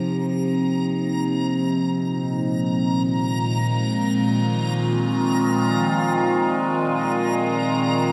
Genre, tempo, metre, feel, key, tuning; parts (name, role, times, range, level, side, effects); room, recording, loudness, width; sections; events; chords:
ambient; free time; A4 = 444 Hz
evolving wavetable pad; sustained chords; 0.0-8.1 s; Bb2 to G4; -24 LUFS; equal; phaser, built-in reverb
analog drone; drone; 0.0-8.1 s; F3 to C4; -26 LUFS; equal; chorus
backwards swelling texture; texture; 0.0-8.1 s; Bb5; -34 LUFS; equal; built-in reverb
wet cathedral reverb, RT60 6.8 s; -22 LUFS; mono
0.0-8.1 A section
fade-in on synth texture 0.0-8.1
0.0 Cm7; 1.7 Bb5; 7.0 Bb9sus4